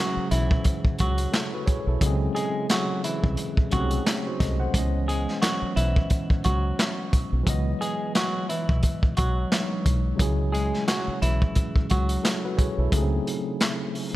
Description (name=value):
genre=hip hop, boom-bap hip-hop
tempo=88 BPM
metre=4/4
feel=swing 57% on 16ths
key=unclear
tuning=A4 = 440 Hz
part: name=semi-hollow electric guitar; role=melody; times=0.0-12.9 s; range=E3 to G#4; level=-30 LUFS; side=right 1 dB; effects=spring reverb, high-pass filter, low-pass filter
part: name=tine electric piano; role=accompaniment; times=0.0-14.2 s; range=C#3 to F#5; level=-30 LUFS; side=equal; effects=medium stereo tremolo, cassette tape, high-pass filter, low-pass filter
part: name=deep dub fingered electric bass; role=bass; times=0.2-13.2 s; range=B1 to C#2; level=-25 LUFS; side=equal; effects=none
part: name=crunchy breakbeat drum kit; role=drums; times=0.3-14.1 s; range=handclaps, hi-hat, kick drum, snare drum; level=-25 LUFS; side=equal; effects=none
room=light reverb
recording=none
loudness=-22 LUFS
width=side -16 dB against mid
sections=0.0-14.2 A section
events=none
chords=0.0 F#sus2; 2.0 G#7b9; 4.7 C#m9; 7.5 Emaj9; 10.2 F#sus2; 12.9 G#7b9